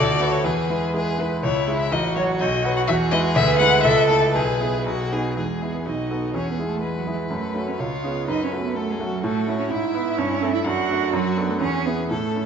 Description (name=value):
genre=quick classical-period movement for piano quartet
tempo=124 BPM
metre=2/4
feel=rubato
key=E major, A major from 9.2 s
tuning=A4 = 441 Hz
part: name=warm violin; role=melody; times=0.0-12.5 s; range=E4 to F#5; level=-26 LUFS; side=left 6 dB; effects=none
part: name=rich violin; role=second line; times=0.0-12.5 s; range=D4 to C#5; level=-30 LUFS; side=left 2 dB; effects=none
part: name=warm cello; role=second line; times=0.0-12.5 s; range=E3 to B4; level=-25 LUFS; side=right 8 dB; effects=none
part: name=bright concert grand piano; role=accompaniment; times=0.0-12.5 s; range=A1 to E5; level=-23 LUFS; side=equal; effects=none
room=moderate scoring stage reverb, RT60 1.7 s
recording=nothing above 7.7 kHz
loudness=-19 LUFS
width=side -7 dB against mid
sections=0.0-5.4 A section; 5.4-12.5 B section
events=none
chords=0.4 E; 1.4 C#m; 1.9 F#m/A; 2.4 B; 2.9 E; 3.4 E7/D; 3.8 A/C#; 4.3 E/B; 4.9 B; 5.4 E; 5.9 B7; 6.3 E; 7.3 F#m; 7.8 C#7; 8.3 F#m; 9.2 A; 9.7 E/G#; 10.2 A7/G; 10.7 D/F#; 11.1 Bm7/F#; 11.6 E